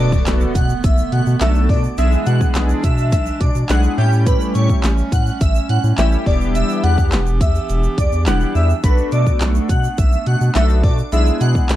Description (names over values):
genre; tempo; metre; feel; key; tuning
dance-pop; 105 BPM; 4/4; straight; unclear; A4 = 442 Hz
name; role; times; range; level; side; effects
airy dreamy lead; melody; 0.0-11.6 s; B4 to G5; -24 LUFS; equal; chorus, sidechain pumping, slapback echo
chorused polysynth; accompaniment; 0.0-11.8 s; G3 to A4; -22 LUFS; left 2 dB; sidechain pumping
clear woodwind section; sustained chords; 0.0-11.8 s; D3 to G4; -26 LUFS; right 4 dB; sidechain pumping
saturated sub bass; bass; 0.0-11.8 s; E1 to B2; -16 LUFS; equal; sidechain pumping
impact; sound effects; 0.0-2.0 s; none; -30 LUFS; equal; none
pop drum kit; drums; 0.1-11.8 s; handclaps, hi-hat, kick drum, snare drum; -18 LUFS; equal; none
tube shaker; percussion; 0.1-11.8 s; none; -40 LUFS; right 21 dB; none
room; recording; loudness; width
digital ambience; dry, close 1970s-style studio recording; -14 LUFS; side -14 dB against mid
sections
0.0-11.8 A section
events
impact 0.0-2.0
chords
0.0 Bm7; 2.0 E7/B; 4.0 A7; 6.3 Em7; 8.8 Bm7; 11.1 E7/B